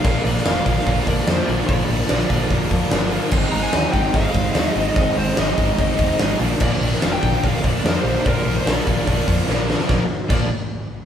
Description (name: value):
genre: classic rock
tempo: 146 BPM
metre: 4/4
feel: straight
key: Bb mixolydian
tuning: A4 = 440 Hz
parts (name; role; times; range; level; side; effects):
- smooth overdriven lead guitar; melody; 0.0-10.5 s; Bb4 to Bb5; -26 LUFS; left 1 dB; none
- picked acoustic archtop guitar; accompaniment; 0.0-10.5 s; Ab2 to Bb4; -30 LUFS; left 2 dB; none
- cranked stack guitar; riff; 0.0-10.5 s; Ab2 to Eb4; -27 LUFS; left 5 dB; overdrive
- sludgy distorted guitar; riff; 0.0-10.5 s; Ab2 to F4; -24 LUFS; right 6 dB; overdrive
- big rock drum kit; drums; 0.0-10.4 s; crash cymbal, hi-hat, kick drum, snare drum; -20 LUFS; left 1 dB; none
- hollow-body short-scale fingered electric bass; bass; 0.1-10.5 s; F1 to F2; -24 LUFS; equal; none
- cowbell; percussion; 0.1-10.5 s; none; -36 LUFS; right 2 dB; none
room: moderate stone room reverb, RT60 1.1 s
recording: band playing live in one room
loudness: -17 LUFS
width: side -9 dB against mid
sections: 0.0-9.9 A section; 9.9-11.1 B section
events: drum fill 9.5-9.9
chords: 0.0 Bb; 3.3 Ab; 6.4 Bb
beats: | 0.05 0.46 0.87 1.28 | 1.69 2.10 2.51 2.92 | 3.33 3.74 4.15 4.56 | 4.97 5.38 5.79 6.20 | 6.61 7.02 7.43 7.84 | 8.25 8.66 9.07 9.48 | 9.89 10.30